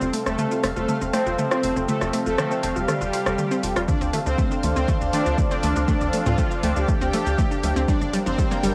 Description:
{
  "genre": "melodic techno",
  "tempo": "120 BPM",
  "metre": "4/4",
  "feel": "straight",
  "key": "unclear",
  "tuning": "A4 = 439 Hz",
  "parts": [
    { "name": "soft supersaw", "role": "melody", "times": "0.0-8.5 s", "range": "G3 to G4", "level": "-31 LUFS", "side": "equal", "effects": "sidechain pumping, analog delay" },
    { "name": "soft supersaw", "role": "second line", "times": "0.0-8.5 s", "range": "G4 to G5", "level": "-36 LUFS", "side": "equal", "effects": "cassette tape, sidechain pumping, analog delay" },
    { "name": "lush unison pad", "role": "sustained chords", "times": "0.0-8.7 s", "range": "C4 to G5", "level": "-33 LUFS", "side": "equal", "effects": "chorus, phaser, sidechain pumping" },
    { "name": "analog pluck", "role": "arpeggios", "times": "0.0-8.7 s", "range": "G3 to C5", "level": "-30 LUFS", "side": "equal", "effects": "chorus, sidechain pumping, analog delay" },
    { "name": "tight sequencer bass", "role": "bass", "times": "0.0-8.7 s", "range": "F1 to D2", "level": "-29 LUFS", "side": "equal", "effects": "sidechain pumping" },
    { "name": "bowed-like drone", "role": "drone", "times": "0.0-8.7 s", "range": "C3 to G3", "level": "-43 LUFS", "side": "equal", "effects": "none" },
    { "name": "house drum kit", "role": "drums", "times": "0.0-8.7 s", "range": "hi-hat, rim click, shaker, toms", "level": "-31 LUFS", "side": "equal", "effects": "overdrive, cassette tape" },
    { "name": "warbly tape-like pad", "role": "texture", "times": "0.0-8.7 s", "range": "C4 to G5", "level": "-35 LUFS", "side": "equal", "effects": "none" },
    { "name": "sync-sweep polysynth", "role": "stabs", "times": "1.1-6.8 s", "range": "F3 to D4", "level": "-33 LUFS", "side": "equal", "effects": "chorus, sidechain pumping, analog delay" },
    { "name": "electronic kick drum", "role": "drums", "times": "3.9-8.5 s", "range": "none", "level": "-26 LUFS", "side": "equal", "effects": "overdrive, cassette tape" }
  ],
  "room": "moderate spring reverb, RT60 1.6 s, digital ambience",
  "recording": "home recording on cassette",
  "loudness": "-22 LUFS",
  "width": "mono",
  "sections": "0.0-8.7 A section",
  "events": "build-up 0.0-8.7; drum fill 0.0-8.7",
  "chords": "0.0 F; 3.9 Dm7; 7.9 Gm"
}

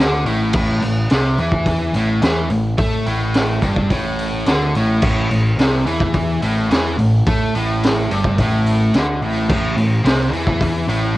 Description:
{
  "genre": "garage rock duo or trio",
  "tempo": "107 BPM",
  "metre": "4/4",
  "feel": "straight",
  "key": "unclear",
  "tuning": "A4 = 440 Hz",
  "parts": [
    { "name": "biting overdriven guitar", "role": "riff", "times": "0.0-11.2 s", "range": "G2 to A3", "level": "-18 LUFS", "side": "equal", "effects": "cassette tape" },
    { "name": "growling picked electric bass", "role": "bass", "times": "0.0-11.1 s", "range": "G1 to A2", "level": "-21 LUFS", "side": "equal", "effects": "overdrive" },
    { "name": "raw garage drum kit", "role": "drums", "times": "0.3-11.0 s", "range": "crash cymbal, hi-hat, kick drum, snare drum", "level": "-20 LUFS", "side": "equal", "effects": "cassette tape" }
  ],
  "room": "small room ambience",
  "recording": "home recording on cassette",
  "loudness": "-15 LUFS",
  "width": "side -17 dB against mid",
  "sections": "0.0-11.2 A section",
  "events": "none",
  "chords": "0.0 A5"
}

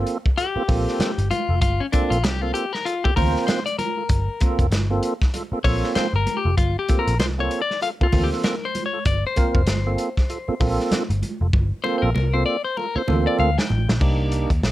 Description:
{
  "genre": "funk",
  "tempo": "97 BPM",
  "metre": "4/4",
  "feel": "swing 60% on 16ths",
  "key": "G minor",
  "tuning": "A4 = 440 Hz",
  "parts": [
    { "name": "tonewheel organ", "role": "stabs", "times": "0.0-14.5 s", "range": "Bb3 to C5", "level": "-25 LUFS", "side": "right 3 dB", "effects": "overdrive, chorus vibrato, slow rotary speaker" },
    { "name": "vintage muted picked electric bass", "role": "bass", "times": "0.0-14.7 s", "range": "F1 to Eb2", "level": "-22 LUFS", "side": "equal", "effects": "none" },
    { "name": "crunchy breakbeat drum kit", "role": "drums", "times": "0.1-14.7 s", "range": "crash cymbal, hi-hat, kick drum, snare drum", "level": "-22 LUFS", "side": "equal", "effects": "none" },
    { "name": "clean electric guitar", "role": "accompaniment", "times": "0.4-14.0 s", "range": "C#4 to G5", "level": "-25 LUFS", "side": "left 5 dB", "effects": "none" },
    { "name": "congas", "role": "percussion", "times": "0.7-13.9 s", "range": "none", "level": "-32 LUFS", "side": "right 3 dB", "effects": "none" }
  ],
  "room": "light reverb",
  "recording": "dark, warm production",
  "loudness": "-19 LUFS",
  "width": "side -15 dB against mid",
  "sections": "0.0-14.0 A section",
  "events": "clean electric guitar solo 0.0-14.0; drum fill 11.5-14.0",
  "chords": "0.0 Gm11; 14.0 Cm9"
}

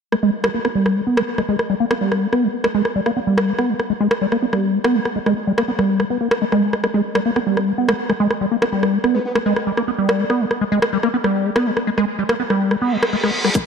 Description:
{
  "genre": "psychedelic trance",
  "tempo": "143 BPM",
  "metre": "4/4",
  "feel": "straight",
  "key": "unclear",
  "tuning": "A4 = 440 Hz",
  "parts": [
    { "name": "liquid acid bass", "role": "riff", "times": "0.1-13.6 s", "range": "G3 to B3", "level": "-18 LUFS", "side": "moving between left 5 dB and right 4 dB", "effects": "phaser, auto-pan, sidechain pumping, digital delay" },
    { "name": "garage drum kit", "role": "drums", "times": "0.1-13.6 s", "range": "hi-hat, rim click", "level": "-21 LUFS", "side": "equal", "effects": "none" },
    { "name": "formant-sweep wobble bass", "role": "second line", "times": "9.1-9.3 s", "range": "B3", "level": "-28 LUFS", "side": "left 3 dB", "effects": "chorus, sidechain pumping, high-pass filter, ping-pong delay" },
    { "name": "reverse cymbal and riser", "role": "sound effects", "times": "12.8-13.7 s", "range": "none", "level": "-22 LUFS", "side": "right 1 dB", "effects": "none" },
    { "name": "electronic kick drum", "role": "drums", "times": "13.6 s", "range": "none", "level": "-19 LUFS", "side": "left 1 dB", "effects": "high-pass filter on kick" }
  ],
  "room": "moderate lush hall reverb, RT60 2.0 s",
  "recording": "dark, warm production",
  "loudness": "-16 LUFS",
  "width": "side -6 dB against mid",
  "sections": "0.1-13.6 A section",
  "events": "reverse cymbal 12.8-13.6",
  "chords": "0.1 G"
}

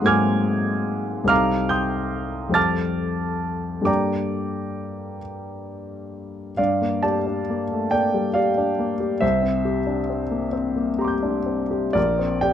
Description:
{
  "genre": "classical, impressionist solo piano",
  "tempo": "41-51 BPM (dotted quarters)",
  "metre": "6/8",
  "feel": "rubato",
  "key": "G dorian",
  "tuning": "A4 = 440 Hz",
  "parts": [
    { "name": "clear grand piano", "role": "solo", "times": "0.0-12.5 s", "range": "Bb1 to A6", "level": "-20 LUFS", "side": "equal", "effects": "none" }
  ],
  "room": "light reverb",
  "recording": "dark, warm production",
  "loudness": "-20 LUFS",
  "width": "side -9 dB against mid",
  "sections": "0.0-6.6 A section; 6.6-12.5 B section",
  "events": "none",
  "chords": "0.0 Ab9; 1.3 Cm6; 2.6 Fadd9; 3.9 Gmadd9; 9.2 C9; 12.0 Bb69"
}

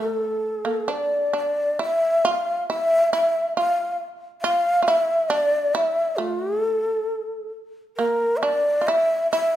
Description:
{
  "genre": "japanese traditional, Japanese chamber music",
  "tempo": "67 BPM",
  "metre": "2/4",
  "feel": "rubato",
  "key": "A miyako bushi",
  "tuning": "A4 = 440 Hz",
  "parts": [
    { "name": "breathy mellow shakuhachi", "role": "melody", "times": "0.0-9.6 s", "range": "A4 to F5", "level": "-20 LUFS", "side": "left 1 dB", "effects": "none" },
    { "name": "shamisen", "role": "second line", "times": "0.0-9.6 s", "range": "A3 to F4", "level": "-27 LUFS", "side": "right 4 dB", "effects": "none" }
  ],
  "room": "moderate scoring stage reverb, RT60 1.7 s",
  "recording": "minimal, uncompressed stereo recording",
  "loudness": "-20 LUFS",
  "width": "side -12 dB against mid",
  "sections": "0.0-8.0 A section; 8.0-9.6 B section",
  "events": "none",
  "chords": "none"
}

